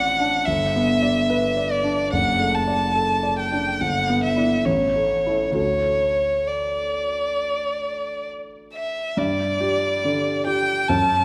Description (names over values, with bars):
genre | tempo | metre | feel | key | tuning
classical, romantic duo for violin and grand piano | 64-73 BPM | 4/4 | rubato | D major | A4 = 435 Hz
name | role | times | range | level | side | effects
rich violin | melody | 0.0-11.2 s | C#5 to A5 | -24 LUFS | equal | none
clear grand piano | accompaniment | 0.0-11.2 s | F#1 to D5 | -26 LUFS | equal | none
room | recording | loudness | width
wet scoring stage reverb, RT60 1.9 s | none | -22 LUFS | mono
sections
0.0-9.2 A section; 9.2-11.2 B section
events
none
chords
0.5 G; 2.1 D/F#; 3.8 Em7/G; 4.7 A; 5.6 D; 9.2 G5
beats
0.47 1.30 | 2.12 2.96 3.80 4.65 | 5.56 6.47 7.39 8.29 | 9.18 10.04 10.89